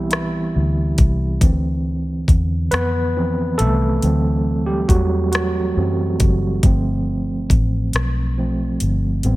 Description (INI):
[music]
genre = slow six-eight R&B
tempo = 46 BPM (dotted quarters)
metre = 6/8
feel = straight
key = unclear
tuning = A4 = 439 Hz
[part]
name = overdriven tine electric piano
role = accompaniment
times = 0.0-9.4 s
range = D3 to B4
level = -21 LUFS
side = right 2 dB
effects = fast tremolo
[part]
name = vintage muted fingered electric bass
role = bass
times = 0.0-9.4 s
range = F#1 to F#2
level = -20 LUFS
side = equal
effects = none
[part]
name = smooth R&B drum kit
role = drums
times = 0.1-9.4 s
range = hi-hat, kick drum, rim click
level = -18 LUFS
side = equal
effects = none
[sound]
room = little or no reverb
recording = none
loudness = -16 LUFS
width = side -18 dB against mid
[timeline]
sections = 0.0-9.4 A section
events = tine electric piano solo 0.0-9.4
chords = 0.0 Am9 (rootless); 1.4 Dm9; 4.0 D9; 6.6 G9sus4